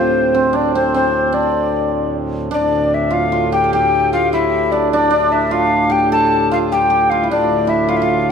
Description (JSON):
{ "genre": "medieval dance", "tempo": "100 BPM (dotted quarters)", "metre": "6/8", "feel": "straight", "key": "D minor", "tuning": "A4 = 442 Hz", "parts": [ { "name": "mellow hollow tenor recorder", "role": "melody", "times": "0.0-8.3 s", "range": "C5 to A5", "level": "-16 LUFS", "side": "left 2 dB", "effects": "none" }, { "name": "hammered dulcimer", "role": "second line", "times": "0.0-8.3 s", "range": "C4 to A4", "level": "-17 LUFS", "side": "right 2 dB", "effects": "none" }, { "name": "pedal harmonium", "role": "drone", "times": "0.0-8.3 s", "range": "D2 to A2", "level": "-22 LUFS", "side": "left 1 dB", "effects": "none" } ], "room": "wet scoring stage reverb, RT60 1.5 s", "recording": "none", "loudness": "-13 LUFS", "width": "side -6 dB against mid", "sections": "0.0-2.5 A section; 2.5-8.3 B section", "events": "none", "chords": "none", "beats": "| 0.13 0.73 | 1.33 1.93 | 2.53 3.13 | 3.73 4.33 | 4.92 5.52 | 6.12 6.71 | 7.31 7.90" }